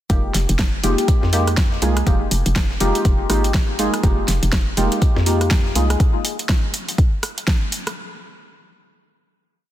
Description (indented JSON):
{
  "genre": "deep house",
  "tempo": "122 BPM",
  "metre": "4/4",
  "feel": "swing 60% on 16ths",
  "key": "F minor",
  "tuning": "A4 = 440 Hz",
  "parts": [
    { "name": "deep mellow chord stab", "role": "stabs", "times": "0.1-5.9 s", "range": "Ab3 to Ab4", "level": "-22 LUFS", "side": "equal", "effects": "chorus, cassette tape, sidechain pumping, ping-pong delay" },
    { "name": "hollow knocking FM bass", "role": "bass", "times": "0.1-6.0 s", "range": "F1 to F2", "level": "-20 LUFS", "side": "equal", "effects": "sidechain pumping" },
    { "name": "breakbeat sampler-style drum kit", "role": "drums", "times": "0.1-5.9 s", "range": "hi-hat, snare drum", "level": "-34 LUFS", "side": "left 1 dB", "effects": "none" },
    { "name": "deep house drum kit", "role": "drums", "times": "0.1-7.9 s", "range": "hi-hat, rim click, snare drum", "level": "-24 LUFS", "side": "equal", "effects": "none" },
    { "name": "electronic kick drum", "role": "drums", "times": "0.1-7.6 s", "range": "none", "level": "-18 LUFS", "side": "equal", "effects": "none" }
  ],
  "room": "little or no reverb",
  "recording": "dense, heavily limited modern master",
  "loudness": "-16 LUFS",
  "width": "side -13 dB against mid",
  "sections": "0.1-8.0 drop",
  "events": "drop 0.1-8.0",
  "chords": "0.1 Fm11"
}